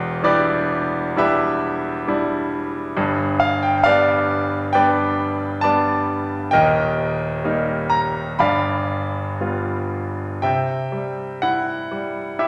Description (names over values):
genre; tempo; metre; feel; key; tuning
classical, lyrical solo piano; 56-68 BPM; 4/4; rubato; unclear; A4 = 441 Hz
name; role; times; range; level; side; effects
bright concert grand piano; solo; 0.0-12.5 s; Eb1 to B5; -20 LUFS; equal; none
room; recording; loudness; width
wet scoring stage reverb, RT60 1.6 s; none; -20 LUFS; mono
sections
0.0-10.4 A section; 10.4-12.5 B section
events
none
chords
0.0 Em7; 3.0 G; 6.5 Eb; 8.4 G7; 10.4 C